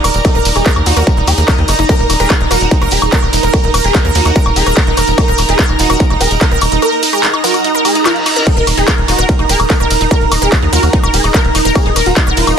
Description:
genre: psychedelic trance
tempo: 146 BPM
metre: 4/4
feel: straight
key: Eb harmonic minor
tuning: A4 = 439 Hz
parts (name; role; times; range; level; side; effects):
- evolving wavetable pad; sustained chords; 0.0-12.6 s; Eb4 to Eb5; -20 LUFS; right 3 dB; chorus, built-in reverb, vintage 12-bit sampler grit, sidechain pumping
- wide unison pluck; riff; 0.0-12.5 s; Eb4 to Eb5; -18 LUFS; moving between left 5 dB and right 7 dB; auto-pan, sidechain pumping, digital delay
- tight sequencer bass; bass; 0.0-12.5 s; Eb1 to Eb2; -15 LUFS; equal; none
- techno drum kit; drums; 0.0-12.6 s; crash cymbal, handclaps, hi-hat, ride cymbal, woodblock; -17 LUFS; left 1 dB; none
- tambourine; percussion; 0.0-12.6 s; none; -24 LUFS; left 3 dB; none
- airy breathy pad; texture; 0.0-12.6 s; Bb5; -20 LUFS; right 5 dB; chorus, sidechain pumping
- swarming rave lead; melody; 0.2-12.5 s; F4 to Bb4; -19 LUFS; left 1 dB; chorus, phaser, sidechain pumping, ping-pong delay
- electronic kick drum; drums; 0.2-12.2 s; none; -13 LUFS; equal; distortion
- reverse cymbal; sound effects; 7.9-8.5 s; none; -22 LUFS; right 2 dB; none
room: digital ambience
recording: dense, heavily limited modern master, faint mains hum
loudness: -9 LUFS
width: side -7 dB against mid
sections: 0.0-12.6 A section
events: reverse cymbal 7.9-8.5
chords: 0.0 Eb5

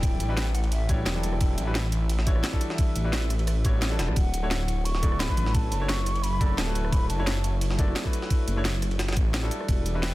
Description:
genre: liquid drum and bass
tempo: 174 BPM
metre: 4/4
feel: swing 53% on 16ths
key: D major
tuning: A4 = 441 Hz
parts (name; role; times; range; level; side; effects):
- mellow hollow concert flute; melody; 0.0-1.9, 4.2-7.6, 10.0-10.1 s; E5 to C#6; -35 LUFS; equal; dub echo
- clear grand piano; accompaniment; 0.0-10.1 s; F#3 to D5; -34 LUFS; equal; tape echo
- warm analog pad; sustained chords; 0.0-10.1 s; E3 to E5; -37 LUFS; equal; chorus
- swelling detuned saw bass; bass; 0.0-10.1 s; D1 to B1; -27 LUFS; equal; none
- drum and bass drum kit; drums; 0.0-10.1 s; hi-hat, rim click, snare drum; -32 LUFS; equal; none
- electronic kick drum; drums; 0.0-9.8 s; none; -24 LUFS; equal; none
- jungle sampler-style drum kit; drums; 0.0-10.1 s; ride cymbal, snare drum; -35 LUFS; right 1 dB; high-pass filter on cymbals, high-pass filter on snare, high-pass filter on room
room: little or no reverb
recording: dense, heavily limited modern master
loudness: -23 LUFS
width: side -18 dB against mid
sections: 0.0-10.1 A section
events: none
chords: 0.0 Dmaj9

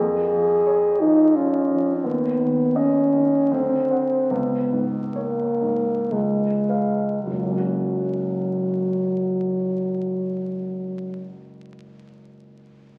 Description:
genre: classical, romantic duo for French horn and grand piano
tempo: 50-88 BPM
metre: 3/4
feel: rubato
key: F# major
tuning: A4 = 440 Hz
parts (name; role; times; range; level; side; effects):
- dark French horn; melody; 0.0-11.3 s; F#3 to G#4; -23 LUFS; equal; none
- warm baby grand piano; accompaniment; 0.0-13.0 s; F#1 to F#5; -31 LUFS; equal; none
room: wet scoring stage reverb, RT60 1.9 s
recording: very old 78 rpm record, vinyl crackle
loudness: -22 LUFS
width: mono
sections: 0.0-7.3 A section; 7.3-13.0 B section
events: slowing down 1.0-7.3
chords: 0.0 C#/E#; 2.0 N.C.; 3.5 D7; 4.3 C#5; 6.1 C#7; 7.3 F#

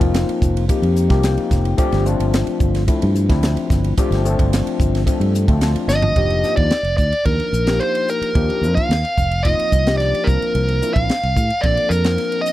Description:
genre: electric jazz fusion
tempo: 110 BPM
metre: 4/4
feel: straight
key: unclear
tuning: A4 = 440 Hz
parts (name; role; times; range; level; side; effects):
- overdriven tine electric piano; accompaniment; 0.0-12.5 s; F3 to A5; -22 LUFS; left 4 dB; wide subtle chorus
- fingered electric bass; bass; 0.0-12.2 s; F1 to A2; -19 LUFS; equal; none
- crisp fusion drum kit; drums; 0.0-12.5 s; hi-hat, kick drum, ride cymbal, snare drum, toms; -20 LUFS; equal; none
- dark smooth lead guitar; melody; 5.9-12.5 s; Bb4 to F5; -19 LUFS; right 1 dB; overdrive
room: studio ambience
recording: dry, close 1970s-style studio recording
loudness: -15 LUFS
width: side -15 dB against mid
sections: 0.0-6.2 A section; 6.2-12.5 B section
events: tine electric piano fill 1.0-1.8, 5.3-6.2; drum fill 5.9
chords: 0.0 F9sus4; 1.8 G9sus4; 6.2 F13sus4; 10.3 C13sus4

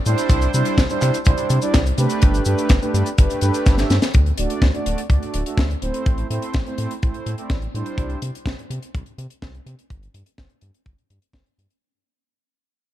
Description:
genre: italo disco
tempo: 125 BPM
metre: 4/4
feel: straight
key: A dorian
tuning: A4 = 440 Hz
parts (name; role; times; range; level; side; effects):
- mellow synth brass; stabs; 0.1-8.2 s; G3 to E5; -24 LUFS; right 2 dB; chorus, ping-pong delay
- round analog bass; bass; 0.1-11.7 s; D1 to C3; -22 LUFS; equal; none
- tight funk drum kit; drums; 0.1-11.8 s; cabasa, handclaps, hi-hat, snare drum; -26 LUFS; left 2 dB; none
- kick drum; drums; 0.3-11.4 s; none; -17 LUFS; equal; none
room: small room ambience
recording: dark, warm production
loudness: -17 LUFS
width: side -13 dB against mid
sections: 0.0-4.1 A section; 4.1-11.8 B section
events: drum fill 3.7-4.1; fade-out 4.1-11.8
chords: 0.3 Cadd9; 2.2 Gadd9; 4.1 D; 6.1 Am; 8.0 N.C.

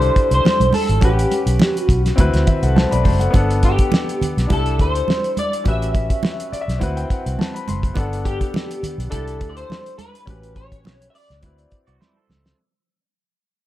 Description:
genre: lush 1970s-style soul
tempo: 104 BPM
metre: 4/4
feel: swing 54% on 16ths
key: G major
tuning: A4 = 438 Hz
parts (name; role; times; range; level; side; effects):
- electric guitar through a small old amp; melody; 0.0-12.3 s; G4 to E5; -22 LUFS; equal; tube saturation, ensemble chorus
- clear concert grand piano; accompaniment; 0.0-12.6 s; B3 to C6; -25 LUFS; left 3 dB; none
- vintage muted fingered electric bass; bass; 0.0-12.5 s; F#1 to D2; -20 LUFS; equal; none
- cloth-damped thuddy drum kit; drums; 0.0-12.6 s; hi-hat, kick drum, snare drum; -19 LUFS; equal; none
- congas; percussion; 0.5-12.4 s; none; -25 LUFS; right 4 dB; none
- electric guitar through a small old amp; riff; 11.9-12.6 s; C4 to D5; -69 LUFS; right 6 dB; wide subtle chorus
room: small room reverb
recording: dark, warm production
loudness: -16 LUFS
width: side -14 dB against mid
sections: 0.0-3.3 A section; 3.3-12.6 B section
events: fade-out 3.3-12.6; grand piano fill 6.2-8.0; drum fill 12.0-12.6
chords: 0.0 C69; 1.0 A13; 2.2 D13; 3.3 Gmaj9; 4.5 C69; 5.7 A13; 6.8 D13; 8.0 Gmaj9; 9.1 C69; 10.3 A13; 11.4 D13

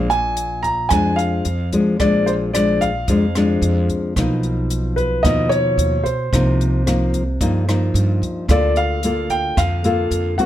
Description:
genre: bossa nova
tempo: 111 BPM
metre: 4/4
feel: straight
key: Bb major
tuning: A4 = 440 Hz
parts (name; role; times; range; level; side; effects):
- dark concert grand piano; melody; 0.0-10.5 s; B4 to Bb5; -21 LUFS; equal; none
- nylon-string guitar; accompaniment; 0.0-10.5 s; F2 to A4; -19 LUFS; left 2 dB; none
- upright bass; bass; 0.0-10.4 s; Bb1 to G2; -21 LUFS; right 1 dB; none
- compact cocktail drum kit; drums; 0.1-10.5 s; hi-hat, kick drum, rim click; -24 LUFS; equal; none
room: light reverb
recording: none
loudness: -16 LUFS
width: side -12 dB against mid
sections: 0.0-10.5 A section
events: none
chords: 0.0 Bb7; 4.2 Bmaj9#11; 6.3 Cm7; 8.5 Bbmaj7/D

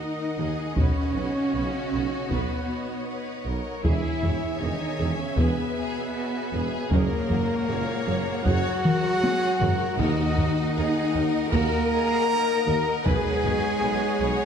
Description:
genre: cinematic, epic orchestral film score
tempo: 78 BPM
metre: 4/4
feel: straight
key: Eb phrygian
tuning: A4 = 439 Hz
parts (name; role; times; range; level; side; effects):
- rich symphonic violin section; melody; 0.0-14.4 s; F#4 to Db5; -35 LUFS; left 4 dB; none
- warm symphonic violin section; second line; 0.0-14.4 s; Db5 to G#5; -37 LUFS; left 2 dB; none
- rich symphonic viola section; accompaniment; 0.0-14.4 s; B3 to Eb5; -37 LUFS; right 2 dB; none
- dark French horn section; sustained chords; 0.0-14.4 s; Eb3 to Bb4; -31 LUFS; left 6 dB; none
- rich symphonic string section; sustained chords; 0.0-14.4 s; Ab3 to G#5; -38 LUFS; equal; none
- warm trombone section; sustained chords; 0.0-14.4 s; Bb2 to Bb3; -33 LUFS; right 3 dB; none
- warm trumpet; stabs; 0.0-14.4 s; Bb4 to Bb5; -32 LUFS; equal; none
- rich symphonic cello section; bass; 0.0-14.4 s; Bb3 to Bb4; -30 LUFS; right 2 dB; none
- impact; sound effects; 0.0-0.8 s; none; barely audible; none; none
- rich symphonic double bass section; bass; 0.4-14.3 s; B1 to Gb2; -31 LUFS; right 3 dB; none
- warm tuba; bass; 0.4-14.4 s; E1 to Eb2; -33 LUFS; right 3 dB; none
- taiko ensemble; drums; 0.8-13.8 s; none; -26 LUFS; left 1 dB; none
- timpani; percussion; 10.0-11.1 s; Eb3; -32 LUFS; left 2 dB; none
room: wet scoring stage reverb, RT60 1.6 s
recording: dark, warm production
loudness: -22 LUFS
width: side -7 dB against mid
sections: 0.0-14.4 A section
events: impact 0.0-0.8; drum fill 8.8-10.0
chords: 0.0 Ebm; 0.8 Badd9; 3.8 E; 6.9 Gbadd9; 10.0 Ebm; 13.1 Badd9

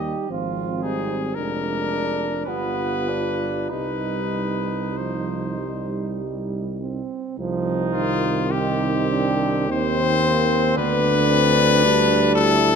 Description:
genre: classical, hymn-like piece for brass band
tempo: 47-57 BPM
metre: 3/4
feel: rubato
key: C minor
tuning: A4 = 440 Hz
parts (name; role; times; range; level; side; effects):
- clear cornet; melody; 0.0-12.8 s; F4 to Eb5; -23 LUFS; left 7 dB; none
- warm flugelhorn; second line; 0.0-12.8 s; B3 to G4; -28 LUFS; right 8 dB; none
- mellow trombone; accompaniment; 0.0-12.8 s; D3 to C4; -28 LUFS; right 5 dB; none
- warm euphonium; accompaniment; 0.0-12.8 s; Bb3 to F4; -28 LUFS; equal; none
- mellow tuba; bass; 0.0-12.8 s; F1 to Eb2; -25 LUFS; right 1 dB; none
room: moderate concert hall reverb, RT60 1.9 s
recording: none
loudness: -19 LUFS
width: side -6 dB against mid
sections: 0.0-7.4 A section; 7.4-12.8 B section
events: none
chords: 0.3 Ab6; 1.4 Ddim/F; 2.5 G7; 3.7 Cm; 10.8 Bm/D

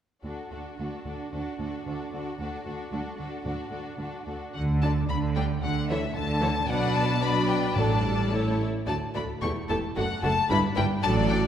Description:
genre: quick classical-period movement for symphony orchestra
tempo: 112 BPM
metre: 2/4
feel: rubato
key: D major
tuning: A4 = 440 Hz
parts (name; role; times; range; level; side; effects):
- clear studio violin section; melody; 0.2-11.4 s; A4 to C#6; -32 LUFS; left 4 dB; none
- rich studio violin section; second line; 0.2-11.5 s; E4 to D5; -33 LUFS; left 2 dB; none
- rich studio viola section; accompaniment; 0.2-11.5 s; E3 to F#4; -32 LUFS; right 1 dB; none
- rich studio cello section; bass; 0.2-11.5 s; D2 to D3; -31 LUFS; right 1 dB; none
- clear studio double bass section; bass; 4.5-11.5 s; E1 to D2; -30 LUFS; right 2 dB; none
- timpani; percussion; 7.8-8.3 s; A2; -30 LUFS; equal; none
room: wet concert hall reverb, RT60 1.9 s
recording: heard from further back in the room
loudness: -25 LUFS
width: side -9 dB against mid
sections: 0.2-4.6 A section; 4.6-11.5 B section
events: none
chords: 0.2 D; 5.1 G5/D; 5.6 A5/D; 6.7 Bm; 7.8 D/A; 8.3 A; 8.9 D; 9.4 A5/E; 10.0 D/F#; 10.5 Em7/G (rootless)

